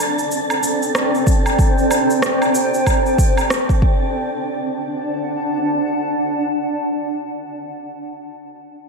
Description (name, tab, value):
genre	organic downtempo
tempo	94 BPM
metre	4/4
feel	swing 60% on 16ths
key	unclear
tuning	A4 = 440 Hz
part	granular cloud pad	sustained chords	0.0-7.5 s	C4 to A5	-19 LUFS	equal	built-in reverb, sidechain pumping
part	electronic shaker, woodblock and rim click	drums	0.0-3.8 s	none	-21 LUFS	right 1 dB	overdrive
part	wind-like tuned noise texture	texture	0.0-4.2 s	A4 to A5	-28 LUFS	right 2 dB	built-in reverb
part	electronic kick drum	drums	1.3-4.0 s	none	-16 LUFS	equal	overdrive
room	light reverb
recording	none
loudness	-16 LUFS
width	side -4 dB against mid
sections	0.0-4.1 A section; 4.1-6.7 B section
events	none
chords	0.0 Csus2; 3.8 D5; 4.1 D